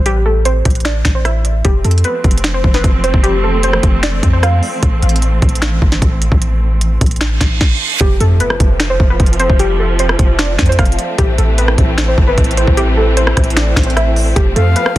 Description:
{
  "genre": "hip hop, trap",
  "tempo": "151 BPM",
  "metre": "4/4",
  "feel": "half-time",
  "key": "unclear",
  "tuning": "A4 = 441 Hz",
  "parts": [
    { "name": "warbly dusty pluck", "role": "melody", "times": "0.0-4.8, 8.0-15.0 s", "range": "G4 to F5", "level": "-18 LUFS", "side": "equal", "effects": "chorus, ping-pong delay" },
    { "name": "clean 808-style bass", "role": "bass", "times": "0.0-15.0 s", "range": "F1 to F2", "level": "-14 LUFS", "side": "equal", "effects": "none" },
    { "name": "trap drum kit", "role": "drums", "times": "0.1-15.0 s", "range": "finger snaps, hi-hat, kick drum, rim click, snare drum", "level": "-14 LUFS", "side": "equal", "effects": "none" },
    { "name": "dark symphonic string section", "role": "sustained chords", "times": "1.6-15.0 s", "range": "E3 to C4", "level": "-21 LUFS", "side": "right 1 dB", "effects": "none" },
    { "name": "reverse cymbal and impact", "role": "sound effects", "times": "7.4-9.6 s", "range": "none", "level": "-20 LUFS", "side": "right 3 dB", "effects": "none" },
    { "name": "bright silver concert flute", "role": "second line", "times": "14.6-15.0 s", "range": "F5", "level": "-18 LUFS", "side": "left 4 dB", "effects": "none" }
  ],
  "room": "little or no reverb",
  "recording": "dense, heavily limited modern master",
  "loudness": "-10 LUFS",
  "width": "side -15 dB against mid",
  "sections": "0.0-8.0 A section; 8.0-15.0 B section",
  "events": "reverse cymbal 7.4-8.0; impact 8.0-9.6",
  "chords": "0.0 Am; 1.6 F; 4.8 Am; 8.0 F; 11.2 Am; 14.4 F",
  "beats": "| 0.06 0.46 0.85 1.25 | 1.65 2.04 2.44 2.84 | 3.24 3.63 4.03 4.43 | 4.83 5.22 5.62 6.02 | 6.42 6.81 7.21 7.61 | 8.01 8.40 8.80 9.20 | 9.60 9.99 10.39 10.79 | 11.18 11.58 11.98 12.38 | 12.77 13.17 13.57 13.96 | 14.36 14.76"
}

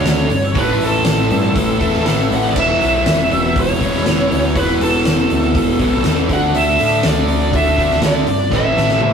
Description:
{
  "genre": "quiet-loud alternative rock",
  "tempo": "121 BPM",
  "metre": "4/4",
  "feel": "straight",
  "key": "unclear",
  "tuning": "A4 = 440 Hz",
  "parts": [
    { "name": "bluesy overdriven lead guitar", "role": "melody", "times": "0.0-9.1 s", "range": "A4 to F#5", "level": "-18 LUFS", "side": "equal", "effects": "distortion" },
    { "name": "fuzz guitar", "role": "riff", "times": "0.0-9.1 s", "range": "E2 to D4", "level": "-18 LUFS", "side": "right 1 dB", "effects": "distortion" },
    { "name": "growling picked electric bass", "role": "bass", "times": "0.0-9.1 s", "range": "E1 to A2", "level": "-21 LUFS", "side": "equal", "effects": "overdrive" },
    { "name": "oversized low-tuned drum kit", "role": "drums", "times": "0.1-9.1 s", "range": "crash cymbal, hi-hat, kick drum, snare drum, toms", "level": "-19 LUFS", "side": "left 1 dB", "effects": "none" }
  ],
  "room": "moderate stone room reverb, RT60 1.3 s",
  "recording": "rough rehearsal-room recording",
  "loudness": "-13 LUFS",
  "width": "side -7 dB against mid",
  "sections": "0.0-9.1 A section",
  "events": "drum fill 8.5-9.1",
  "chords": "0.0 D5; 0.6 A5; 2.6 E5; 6.3 D5; 8.5 A5",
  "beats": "0.05 | 0.55 1.06 1.56 2.06 | 2.56 3.06 3.56 4.06 | 4.55 5.05 5.55 6.04 | 6.54 7.04 7.53 8.03 | 8.52 9.02"
}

